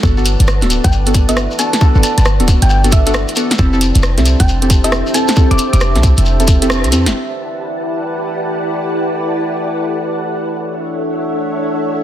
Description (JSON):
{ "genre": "UK garage, two-step garage", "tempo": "135 BPM", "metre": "4/4", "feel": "swing 65% on 16ths", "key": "E minor", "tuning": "A4 = 440 Hz", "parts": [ { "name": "soft string machine", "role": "sustained chords", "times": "0.0-12.0 s", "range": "D4 to A5", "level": "-22 LUFS", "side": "equal", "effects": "ensemble chorus, sidechain pumping" }, { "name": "deep mellow chord stab", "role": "stabs", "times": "0.0-7.0 s", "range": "B3 to A4", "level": "-18 LUFS", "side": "equal", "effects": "wide subtle chorus, cassette tape, tape echo" }, { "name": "short 808-style bass", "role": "bass", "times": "0.0-7.1 s", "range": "D1 to F2", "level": "-13 LUFS", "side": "equal", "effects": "none" }, { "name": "electronic kick drum", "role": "drums", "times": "0.0-6.6 s", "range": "none", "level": "-11 LUFS", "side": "equal", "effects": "overdrive" }, { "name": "shekere", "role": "percussion", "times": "0.0-7.1 s", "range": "none", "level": "-23 LUFS", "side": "left 2 dB", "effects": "none" }, { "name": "deep dark ambient pad", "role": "texture", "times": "0.0-12.0 s", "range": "D4 to F#5", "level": "-24 LUFS", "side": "equal", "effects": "chorus, built-in reverb, sidechain pumping" }, { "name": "garage drum kit", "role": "drums", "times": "0.3-7.1 s", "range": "hi-hat, rim click, snare drum", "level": "-18 LUFS", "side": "right 1 dB", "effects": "overdrive, low-pass filter on hats, low-pass filter on snare" }, { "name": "thumb-piano-like synth pluck", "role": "melody", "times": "0.8-5.9 s", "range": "E5 to D6", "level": "-21 LUFS", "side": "equal", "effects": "chorus, tape echo" } ], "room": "light reverb", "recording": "dense, heavily limited modern master", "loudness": "-11 LUFS", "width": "side -11 dB against mid", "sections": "0.0-7.1 A section; 7.1-12.0 B section", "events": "band accent 6.7", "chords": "0.0 Gmaj9; 3.6 Fmaj9; 7.1 Em11; 10.5 Dmaj9" }